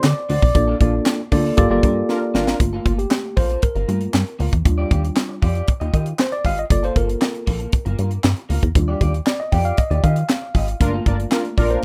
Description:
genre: early-eighties boogie funk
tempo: 117 BPM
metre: 4/4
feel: straight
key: G minor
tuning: A4 = 440 Hz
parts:
  - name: expressive synth lead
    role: melody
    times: 0.0-0.8 s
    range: D5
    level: -26 LUFS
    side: equal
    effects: chorus, plate reverb, tape echo
  - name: tine electric piano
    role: accompaniment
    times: 0.0-11.8 s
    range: G3 to G5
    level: -25 LUFS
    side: equal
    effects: plate reverb
  - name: plucky analog bass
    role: bass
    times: 0.0-11.8 s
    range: G1 to Eb3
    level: -23 LUFS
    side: equal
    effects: none
  - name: tight funk drum kit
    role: drums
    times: 0.0-11.8 s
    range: handclaps, hi-hat, kick drum, snare drum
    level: -21 LUFS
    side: equal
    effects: none
  - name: electric guitar at the edge of break-up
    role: riff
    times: 0.2-11.8 s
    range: Bb3 to Eb5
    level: -33 LUFS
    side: equal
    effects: lush chorus
  - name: analog synth brass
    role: second line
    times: 2.1-2.6, 10.8-11.8 s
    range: D4 to D5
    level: -26 LUFS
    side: equal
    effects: chorus, plate reverb
room: light reverb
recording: rough home demo mix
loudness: -19 LUFS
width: mono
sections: 0.0-2.6 A section; 2.6-11.8 B section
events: band accent 0.6-2.6; drum fill 2.1-2.6; tine electric piano solo 2.6-11.8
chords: 0.0 D7; 0.6 Bbmaj7; 1.6 Gm9; 4.7 Ebmaj9; 6.7 Gm9; 8.8 Ebmaj9; 10.8 Gm9

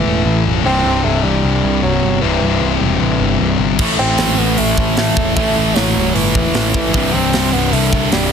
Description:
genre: heavy metal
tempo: 152 BPM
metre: 4/4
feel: straight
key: unclear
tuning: A4 = 440 Hz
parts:
  - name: warm bassoon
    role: melody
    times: 0.0-8.3 s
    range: E3 to C4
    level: -20 LUFS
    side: right 1 dB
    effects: none
  - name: distorted electric guitar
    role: riff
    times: 0.0-8.3 s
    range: C2 to A3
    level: -21 LUFS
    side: right 1 dB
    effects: distortion
  - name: high-gain distorted guitar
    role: riff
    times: 0.0-8.3 s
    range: C2 to A3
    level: -18 LUFS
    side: left 10 dB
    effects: distortion
  - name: fuzz picked electric bass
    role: bass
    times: 0.0-8.3 s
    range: B0 to C2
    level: -19 LUFS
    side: right 1 dB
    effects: overdrive
  - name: high-gain distorted guitar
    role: riff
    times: 3.8-8.3 s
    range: C2 to A3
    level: -20 LUFS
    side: right 13 dB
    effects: distortion
  - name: tight metal drum kit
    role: drums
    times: 3.8-8.2 s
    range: crash cymbal, hi-hat, kick drum, snare drum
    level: -19 LUFS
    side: right 1 dB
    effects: none
room: light reverb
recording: dense, heavily limited modern master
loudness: -12 LUFS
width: side -7 dB against mid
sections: 0.0-8.3 A section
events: none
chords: 0.0 A5; 0.6 C

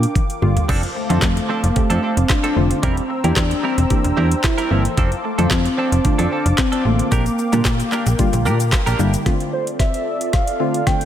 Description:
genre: dance-pop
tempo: 112 BPM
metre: 4/4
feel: straight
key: F major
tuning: A4 = 439 Hz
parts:
  - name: warm velvety synth lead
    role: melody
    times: 0.0-11.1 s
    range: A3 to G5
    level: -23 LUFS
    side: equal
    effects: chorus, digital delay
  - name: wavetable chord stab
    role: accompaniment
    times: 0.0-11.1 s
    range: D3 to A4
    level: -24 LUFS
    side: left 1 dB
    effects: slapback echo
  - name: warm analog pad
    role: sustained chords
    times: 0.0-11.1 s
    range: C4 to E6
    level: -27 LUFS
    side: left 1 dB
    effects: chorus, sidechain pumping
  - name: slap-like FM bass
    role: bass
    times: 0.0-9.2 s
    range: E1 to Bb2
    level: -18 LUFS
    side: equal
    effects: sidechain pumping
  - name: smooth R&B drum kit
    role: drums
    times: 0.0-11.1 s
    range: crash cymbal, handclaps, hi-hat, kick drum, shaker, snare drum, toms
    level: -20 LUFS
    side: equal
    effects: none
  - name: direct-recorded clean electric guitar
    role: riff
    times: 0.7-9.2 s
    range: F3 to Bb4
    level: -26 LUFS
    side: right 3 dB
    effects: analog chorus, slapback echo
room: light reverb, digital ambience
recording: none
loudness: -16 LUFS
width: side -10 dB against mid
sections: 0.0-9.3 A section; 9.3-11.1 B section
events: drum fill 0.2-0.7, 9.3-11.1; build-up 9.3-11.1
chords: 0.0 Bb6; 0.7 F6; 2.8 C7/E; 5.0 F6; 7.1 Bb6; 9.3 F6

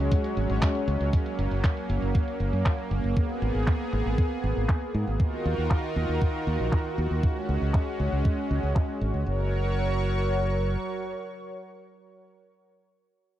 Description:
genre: italo disco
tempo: 118 BPM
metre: 4/4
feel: straight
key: F# major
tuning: A4 = 445 Hz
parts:
  - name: lush unison pad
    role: sustained chords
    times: 0.0-12.3 s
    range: D#3 to C#6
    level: -30 LUFS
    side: right 1 dB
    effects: chorus
  - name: analog synth brass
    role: stabs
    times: 0.0-1.1 s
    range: G#3 to C#5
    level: -31 LUFS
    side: left 4 dB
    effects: chorus, tape echo
  - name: modern bright fingered electric bass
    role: bass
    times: 0.0-10.8 s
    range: F#1 to G#2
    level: -28 LUFS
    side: equal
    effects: none
  - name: clean 12-bit digital drum machine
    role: drums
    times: 0.1-9.2 s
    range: handclaps, hi-hat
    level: -36 LUFS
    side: equal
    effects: low-pass filter on hats, low-pass filter on snare
  - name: electronic kick drum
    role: drums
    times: 0.1-8.9 s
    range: none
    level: -24 LUFS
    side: equal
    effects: none
room: little or no reverb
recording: dry, close 1970s-style studio recording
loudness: -24 LUFS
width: side -12 dB against mid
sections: 0.0-9.3 A section; 9.3-13.3 B section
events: filter sweep on drum 0.0-9.3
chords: 0.0 C#sus4; 1.1 F#; 3.2 G#madd9; 5.2 D#madd9; 7.2 C#sus4; 9.3 F#

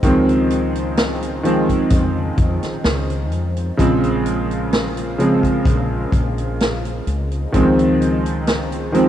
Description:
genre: vaporwave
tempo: 64 BPM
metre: 4/4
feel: straight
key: unclear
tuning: A4 = 440 Hz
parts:
  - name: warm electric grand piano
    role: accompaniment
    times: 0.0-9.1 s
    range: Db3 to C4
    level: -18 LUFS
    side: right 1 dB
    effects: lush chorus, analog delay
  - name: lush unison pad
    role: sustained chords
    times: 0.0-9.1 s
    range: Db3 to F4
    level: -29 LUFS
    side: left 2 dB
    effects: chorus
  - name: woody fretless electric bass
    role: bass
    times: 0.0-9.1 s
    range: Bb1 to F2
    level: -24 LUFS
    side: left 1 dB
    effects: ensemble chorus
  - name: kick drum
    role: drums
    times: 0.0-7.7 s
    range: none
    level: -20 LUFS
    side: left 1 dB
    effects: vintage 12-bit sampler grit
  - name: swinging big-band drum kit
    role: drums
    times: 0.0-9.1 s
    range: hi-hat, snare drum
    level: -23 LUFS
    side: right 1 dB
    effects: vintage 12-bit sampler grit
room: light reverb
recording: rough home demo mix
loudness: -16 LUFS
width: side -11 dB against mid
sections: 0.0-9.1 A section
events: none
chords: 0.0 Dbmaj9; 3.8 Bbm9; 7.1 Dbmaj9

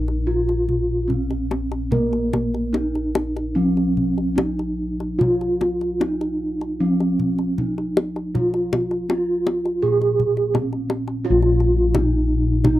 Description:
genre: Javanese gamelan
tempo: 73-86 BPM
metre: 4/4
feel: straight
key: Bb slendro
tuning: A4 = 440 Hz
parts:
  - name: gamelan-type bronze metallophone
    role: melody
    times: 0.0-12.8 s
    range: Bb3 to Ab4-40c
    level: -22 LUFS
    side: right 2 dB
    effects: none
  - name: gamelan-type bossed gongs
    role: bass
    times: 0.0-12.8 s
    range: Bb1 to Bb4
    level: -23 LUFS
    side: left 2 dB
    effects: none
  - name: kendang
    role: percussion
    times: 0.1-12.8 s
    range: none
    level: -24 LUFS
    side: left 2 dB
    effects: none
room: little or no reverb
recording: dry, close 1970s-style studio recording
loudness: -19 LUFS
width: side -14 dB against mid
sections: 0.0-11.2 A section; 11.2-12.8 B section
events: none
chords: none

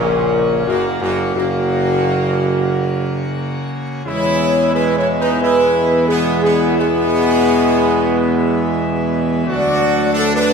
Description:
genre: classical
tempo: 89 BPM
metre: 4/4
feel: straight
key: unclear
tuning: A4 = 440 Hz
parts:
  - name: clear trumpet section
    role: melody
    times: 0.0-10.5 s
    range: A#3 to F#4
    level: -22 LUFS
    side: right 2 dB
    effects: none
  - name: clear trombone section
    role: sustained chords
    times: 0.0-10.5 s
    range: F#2 to G#3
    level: -23 LUFS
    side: right 4 dB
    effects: none
  - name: mellow French horn section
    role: sustained chords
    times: 0.0-10.5 s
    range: F#4 to D5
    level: -17 LUFS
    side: left 2 dB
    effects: none
  - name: pipe organ, full organ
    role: sustained chords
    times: 0.0-10.5 s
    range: C#3 to F#4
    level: -22 LUFS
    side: left 2 dB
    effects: none
  - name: warm tuba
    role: bass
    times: 0.0-10.5 s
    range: F#1 to E2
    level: -20 LUFS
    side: right 2 dB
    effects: none
room: wet scoring stage reverb, RT60 1.8 s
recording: minimal, uncompressed stereo recording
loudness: -14 LUFS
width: side -6 dB against mid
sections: 0.0-10.5 A section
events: none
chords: 0.0 F#; 4.1 E; 9.5 D

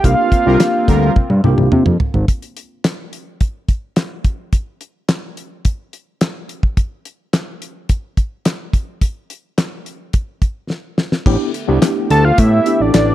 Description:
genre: early-eighties boogie funk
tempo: 107 BPM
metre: 4/4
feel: straight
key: A phrygian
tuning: A4 = 440 Hz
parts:
  - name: fat analog lead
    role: melody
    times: 0.0-1.2, 12.1-13.1 s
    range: D5 to A5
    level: -16 LUFS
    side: right 1 dB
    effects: chorus, slapback echo
  - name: tine electric piano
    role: accompaniment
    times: 0.0-1.9, 11.3-13.1 s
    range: Bb3 to G4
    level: -19 LUFS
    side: left 1 dB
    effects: overdrive, fast stereo tremolo
  - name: warm analog pad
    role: sustained chords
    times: 0.0-2.3, 11.3-13.1 s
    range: D3 to G4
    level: -25 LUFS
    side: right 2 dB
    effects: chorus
  - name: fat analog bass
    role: bass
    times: 0.0-2.3, 11.3-13.1 s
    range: G#1 to C3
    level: -14 LUFS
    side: equal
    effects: none
  - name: damped 70s drum kit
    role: drums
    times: 0.0-13.1 s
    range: crash cymbal, handclaps, hi-hat, kick drum, snare drum, toms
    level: -16 LUFS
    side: equal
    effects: none
  - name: analog synth brass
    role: second line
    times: 0.5-1.1 s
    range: G3 to Bb4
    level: -19 LUFS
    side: left 1 dB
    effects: chorus
room: small room ambience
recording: dry, close 1970s-style studio recording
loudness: -14 LUFS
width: side -14 dB against mid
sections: 0.0-2.3 A section; 2.3-11.3 B section; 11.3-13.1 A section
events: band accent 0.0-2.3; drum fill 1.2-2.3, 10.7-11.3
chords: 0.0 C9sus4; 2.3 N.C.; 11.3 A9sus4

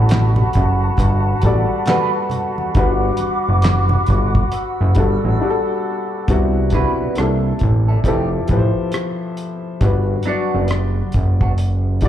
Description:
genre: R&B, neo-soul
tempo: 68 BPM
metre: 4/4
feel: swing 61% on 16ths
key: G major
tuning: A4 = 440 Hz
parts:
  - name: warm upright piano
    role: accompaniment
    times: 0.0-12.1 s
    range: C3 to D5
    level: -22 LUFS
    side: left 3 dB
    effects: slapback echo
  - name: mellow hollow small flute group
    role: sustained chords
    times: 0.0-6.3 s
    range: F#4 to E6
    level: -22 LUFS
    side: equal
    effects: none
  - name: fat analog bass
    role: bass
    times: 0.0-12.1 s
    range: F1 to C2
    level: -16 LUFS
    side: equal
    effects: none
  - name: cloth-damped thuddy drum kit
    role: drums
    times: 0.1-12.1 s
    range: handclaps, hi-hat, kick drum, rim click, snare drum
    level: -19 LUFS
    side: equal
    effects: none
  - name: congas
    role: percussion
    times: 0.4-5.2 s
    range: none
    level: -27 LUFS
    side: right 1 dB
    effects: none
  - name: clean electric guitar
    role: second line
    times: 1.9-11.5 s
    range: E3 to B4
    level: -24 LUFS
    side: right 6 dB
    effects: wah, slapback echo
room: small room ambience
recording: live gig heard through the venue's PA, club reverb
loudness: -15 LUFS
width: side -11 dB against mid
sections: 0.0-6.3 A section; 6.3-12.1 B section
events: break 5.4-6.3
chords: 0.0 Gmaj9; 2.8 Gmaj7; 6.3 Cmaj9#11; 7.2 C13; 8.0 Fmaj9; 9.8 Gmaj7

